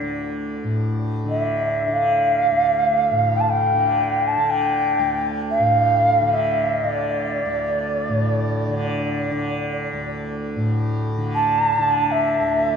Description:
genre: world meditative, free-time meditation music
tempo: free time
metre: none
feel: none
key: D minor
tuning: A4 = 438 Hz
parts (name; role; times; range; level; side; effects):
- tanpura; drone; 0.0-12.8 s; D2 to D3; -24 LUFS; equal; none
- mellow Native American-style cedar flute; melody; 1.3-12.8 s; D5 to A5; -19 LUFS; right 1 dB; shimmer reverb, tape echo
room: wet cathedral reverb, RT60 5.0 s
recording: dark, warm production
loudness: -18 LUFS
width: side -6 dB against mid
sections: 0.0-12.8 A section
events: none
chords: none

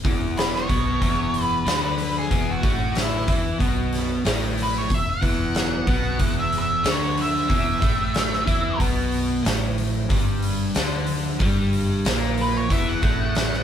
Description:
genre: blues rock power trio and southern rock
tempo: 92 BPM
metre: 4/4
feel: straight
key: unclear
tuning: A4 = 440 Hz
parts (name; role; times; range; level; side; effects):
- crunchy overdriven guitar; riff; 0.0-13.6 s; E2 to E4; -25 LUFS; equal; none
- vintage muted fingered electric bass; bass; 0.0-13.6 s; E1 to E2; -28 LUFS; equal; none
- oversized low-tuned drum kit; drums; 0.0-13.6 s; hi-hat, kick drum, snare drum; -24 LUFS; equal; none
- octave-fuzz lead guitar; melody; 0.4-13.6 s; E4 to F#5; -26 LUFS; right 1 dB; distortion
- tonewheel organ; sustained chords; 12.7-13.6 s; E4 to E5; -37 LUFS; right 3 dB; none
room: light reverb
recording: band playing live in one room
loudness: -20 LUFS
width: side -9 dB against mid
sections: 0.0-13.6 A section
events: lead electric guitar solo 0.0-13.6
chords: 0.0 E

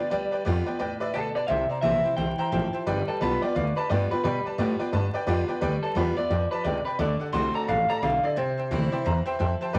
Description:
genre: rockabilly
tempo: 174 BPM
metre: 4/4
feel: swing 62% on 8ths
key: G mixolydian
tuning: A4 = 442 Hz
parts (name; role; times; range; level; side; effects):
- electric guitar through a small old amp; melody; 0.0-9.4 s; A4 to C6; -30 LUFS; equal; none
- picked steel-string acoustic guitar; accompaniment; 0.0-9.8 s; A2 to F#4; -33 LUFS; equal; none
- tack piano; accompaniment; 0.0-9.8 s; A4 to Bb5; -33 LUFS; equal; none
- upright bass; bass; 0.1-9.8 s; G1 to B2; -31 LUFS; equal; none
room: wet studio reverb, RT60 0.8 s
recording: tube saturation, vinyl crackle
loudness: -26 LUFS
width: mono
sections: 0.0-9.8 A section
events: honky-tonk piano fill 8.7-9.7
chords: 0.0 G7; 1.5 C7; 2.9 G7; 7.0 D7; 8.4 C7

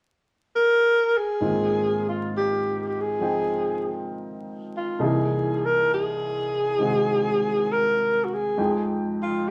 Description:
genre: jazz ballad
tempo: 67 BPM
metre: 4/4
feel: swing 69% on 8ths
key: Ab major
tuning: A4 = 442 Hz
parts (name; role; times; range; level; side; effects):
- breathy alto saxophone; melody; 0.6-9.5 s; F4 to Bb4; -25 LUFS; equal; none
- clear baby grand piano; accompaniment; 1.4-9.5 s; C2 to G5; -29 LUFS; equal; none
room: wet studio reverb, RT60 0.7 s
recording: vinyl crackle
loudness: -24 LUFS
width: mono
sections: 0.0-1.4 A section; 1.4-9.5 B section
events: none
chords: 0.0 N.C.; 1.4 Ab6; 5.0 C7alt; 8.6 Fm7

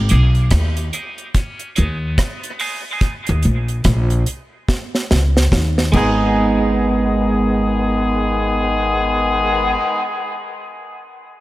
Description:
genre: dub reggae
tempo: 72 BPM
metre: 4/4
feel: swing 62% on 16ths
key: G# minor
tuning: A4 = 443 Hz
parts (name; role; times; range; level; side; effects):
- upright bass; bass; 0.0-9.7 s; G#1 to D#2; -17 LUFS; equal; none
- clear horn section; second line; 0.1-9.7 s; C#3 to G#4; -21 LUFS; left 2 dB; high-pass filter, dub echo
- clean electric guitar; accompaniment; 0.1-9.8 s; G#3 to G#4; -20 LUFS; right 2 dB; high-pass filter, dub echo
- deep reggae drum kit; drums; 0.1-6.2 s; crash cymbal, hi-hat, kick drum, rim click, snare drum; -20 LUFS; equal; none
room: light reverb, small room reverb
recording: echo-heavy mix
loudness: -15 LUFS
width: side -16 dB against mid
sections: 0.0-6.3 A section; 6.3-9.7 B section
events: drum fill 4.7-6.3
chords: 0.0 G#m; 3.0 D#5; 5.9 G#m

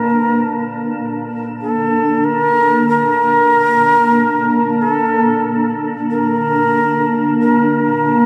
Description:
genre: dark ambient drone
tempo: 46 BPM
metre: 4/4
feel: straight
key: Bb major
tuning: A4 = 443 Hz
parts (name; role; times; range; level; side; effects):
- bright shakuhachi; melody; 0.0-8.3 s; A4 to Bb4; -17 LUFS; equal; tape echo
- granular cloud pad; sustained chords; 0.0-8.3 s; Bb3 to A5; -19 LUFS; equal; built-in reverb
room: wet huge ambient reverb, RT60 9.0 s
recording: dark, warm production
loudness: -15 LUFS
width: mono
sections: 0.0-8.3 A section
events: none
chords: 0.0 Bb

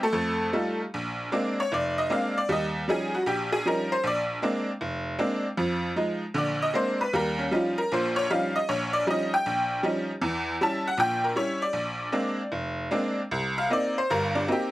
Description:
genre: solo jazz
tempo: 156 BPM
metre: 4/4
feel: swing 66% on 8ths, rubato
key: Bb mixolydian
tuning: A4 = 442 Hz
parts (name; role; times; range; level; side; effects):
- tack piano; solo; 0.0-14.7 s; F1 to A5; -24 LUFS; equal; none
room: light reverb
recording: none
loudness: -24 LUFS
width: side -16 dB against mid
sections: 0.9-14.7 A section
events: honky-tonk piano solo 0.9-14.7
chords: 0.1 F9; 0.9 Bb9; 2.5 Eb9; 4.0 Bb9; 5.6 Fm7; 6.3 Bb9; 7.1 Eb9; 10.2 Edim7; 11.8 Bb9; 13.3 Cm7

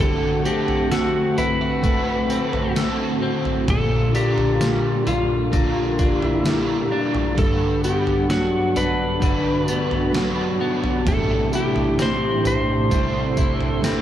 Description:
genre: dream pop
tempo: 65 BPM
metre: 4/4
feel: straight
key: unclear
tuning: A4 = 441 Hz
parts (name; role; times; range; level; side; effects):
- electric slide guitar; melody; 0.0-13.8 s; F4 to C5; -24 LUFS; equal; ping-pong delay
- crunchy overdriven guitar; accompaniment; 0.0-14.0 s; A2 to B4; -26 LUFS; right 4 dB; harmonic tremolo, ensemble chorus
- hollow soft pad; sustained chords; 0.0-14.0 s; C3 to F#5; -26 LUFS; left 1 dB; chorus
- electric guitar at the edge of break-up; arpeggios; 0.0-14.0 s; G2 to F#4; -24 LUFS; left 3 dB; wide subtle chorus, ping-pong delay
- detuned 8-bit digital drum machine; drums; 0.5-14.0 s; kick drum, snare drum, tambourine, toms; -24 LUFS; right 1 dB; none
- celesta; texture; 5.5-7.8 s; A6 to Bb6; -39 LUFS; right 6 dB; none
room: light reverb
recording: played on a big sound system in a bare room, large studio reverb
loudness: -18 LUFS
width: side -11 dB against mid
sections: 0.0-14.0 A section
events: none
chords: 0.0 D7; 3.7 Bb6; 7.4 Gmaj7; 11.1 Am9

